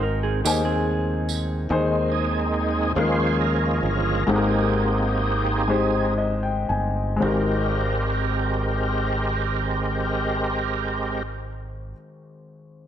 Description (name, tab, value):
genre	slow gospel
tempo	37-48 BPM (dotted quarters)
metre	6/8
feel	straight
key	Ab major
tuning	A4 = 440 Hz
part	clean electric guitar	second line	0.0-1.7 s	Bb3 to Bb4	-28 LUFS	right 6 dB	none
part	warm upright piano	accompaniment	0.0-12.9 s	Ab1 to Ab5	-25 LUFS	left 3 dB	none
part	fingered electric bass	bass	0.0-11.9 s	G1 to Eb2	-26 LUFS	equal	none
part	tambourine	percussion	0.5-1.7 s	none	-29 LUFS	right 9 dB	none
part	overdriven tonewheel organ	sustained chords	1.7-11.2 s	Eb3 to C5	-25 LUFS	right 2 dB	slow rotary speaker, chorus vibrato
room	light reverb, small room ambience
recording	none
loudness	-20 LUFS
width	side -10 dB against mid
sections	0.0-1.7 A section; 1.7-7.2 B section; 7.2-10.5 C section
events	slowing down 1.7-7.2; tonewheel organ solo 1.7-7.2; upright piano fill 5.7-7.2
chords	0.0 Abmaj9; 1.7 Ab/Eb; 3.0 Eb9sus4; 4.3 Abmaj9